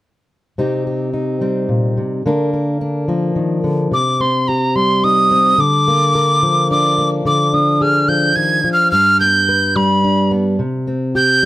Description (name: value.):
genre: folk.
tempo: 108 BPM.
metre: 3/4.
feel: straight.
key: C minor.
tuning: A4 = 437 Hz.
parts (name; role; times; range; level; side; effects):
fingerpicked plugged-in steel-string acoustic guitar; accompaniment; 0.6-11.5 s; G2 to B4; -16 LUFS; equal; none.
breathy bright tin whistle; melody; 3.9-11.5 s; Bb5 to Ab6; -13 LUFS; equal; none.
room: light reverb.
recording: none.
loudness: -13 LUFS.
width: side -16 dB against mid.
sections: 0.6-3.9 A section; 3.9-11.5 B section.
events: none.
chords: 0.6 Cm; 2.3 Bb/D; 3.9 Cm; 5.6 Bb/D; 7.3 Ddim; 8.9 G; 10.6 C5.